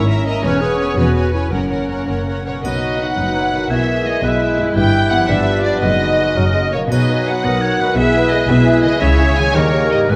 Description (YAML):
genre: classical, dramatic, fast romantic movement for symphony orchestra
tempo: 112 BPM (dotted quarters)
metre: 6/8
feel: rubato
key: B major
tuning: A4 = 440 Hz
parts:
  - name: warm symphonic violin section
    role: melody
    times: 0.0-10.2 s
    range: A#4 to G#5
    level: -23 LUFS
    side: equal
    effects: none
  - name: mellow clarinet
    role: second line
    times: 0.0-10.2 s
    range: C#4 to B4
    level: -28 LUFS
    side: equal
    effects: none
  - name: warm symphonic violin section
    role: second line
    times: 0.0-10.2 s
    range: D4 to A#5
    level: -30 LUFS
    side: equal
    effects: none
  - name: warm symphonic viola section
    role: accompaniment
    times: 0.0-10.2 s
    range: G3 to B4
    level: -27 LUFS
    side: equal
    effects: none
  - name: warm French horn section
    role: sustained chords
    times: 0.0-10.2 s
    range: F#3 to G#4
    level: -25 LUFS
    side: equal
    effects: none
  - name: concert harp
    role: arpeggios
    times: 0.0-10.2 s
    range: E2 to B4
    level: -30 LUFS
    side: equal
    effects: none
  - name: rich symphonic cello section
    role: bass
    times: 0.0-10.2 s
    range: E2 to D#3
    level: -24 LUFS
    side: equal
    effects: none
  - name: warm symphonic double bass section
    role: bass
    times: 0.0-10.2 s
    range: E1 to D#2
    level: -23 LUFS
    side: equal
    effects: none
  - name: bright oboe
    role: second line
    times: 2.6-10.2 s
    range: A#4 to D#5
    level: -26 LUFS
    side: equal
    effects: none
  - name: warm bassoon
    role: accompaniment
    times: 2.6-10.2 s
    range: C#3 to A#3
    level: -25 LUFS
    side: equal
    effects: none
  - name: triangle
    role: percussion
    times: 2.6-3.3, 6.9-7.6 s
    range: none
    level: -42 LUFS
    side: equal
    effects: none
room: wet scoring stage reverb, RT60 1.8 s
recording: none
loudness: -16 LUFS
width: mono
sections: 0.0-2.6 A section; 2.6-10.2 B section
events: none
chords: 0.4 C#m7/E; 1.5 F#; 2.6 B; 3.7 E/B; 4.8 Em/G; 5.3 G7; 5.8 B/F#; 6.4 F#; 6.9 B; 8.0 E/B; 9.0 C#m; 9.6 D#7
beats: | 0.45 0.98 | 1.53 2.08 | 2.65 3.18 | 3.71 4.24 | 4.76 5.29 | 5.83 6.37 | 6.92 7.45 | 7.98 8.50 | 9.02 9.55 | 10.11